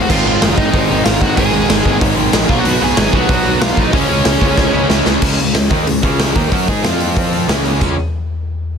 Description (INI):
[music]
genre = punk rock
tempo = 187 BPM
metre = 4/4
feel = straight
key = Db major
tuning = A4 = 439 Hz
[part]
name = bluesy overdriven lead guitar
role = melody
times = 0.0-4.9 s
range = Db4 to Ab5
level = -20 LUFS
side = equal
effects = distortion, tape echo
[part]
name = biting overdriven guitar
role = riff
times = 0.0-5.2 s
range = Ab2 to Db4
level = -21 LUFS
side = equal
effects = none
[part]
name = tight distorted guitar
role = riff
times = 0.0-7.9 s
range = Ab2 to Ab4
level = -20 LUFS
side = left 16 dB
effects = distortion
[part]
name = fuzz picked electric bass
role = bass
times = 0.0-8.0 s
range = Gb1 to Ab2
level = -19 LUFS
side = equal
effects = overdrive
[part]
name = crunchy overdriven guitar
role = riff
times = 0.1-7.9 s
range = Ab2 to Ab4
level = -19 LUFS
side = right 14 dB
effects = none
[part]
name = raw garage drum kit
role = drums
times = 0.1-7.9 s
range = crash cymbal, hi-hat, kick drum, snare drum, splash cymbal, toms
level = -16 LUFS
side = equal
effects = none
[sound]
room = little or no reverb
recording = dense, heavily limited modern master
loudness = -12 LUFS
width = side -6 dB against mid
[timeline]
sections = 0.0-5.2 A section; 5.2-7.8 B section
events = drum fill 4.6-5.2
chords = 0.1 Ab5; 2.5 Cb5; 3.9 Db5; 6.8 F5; 7.5 Db5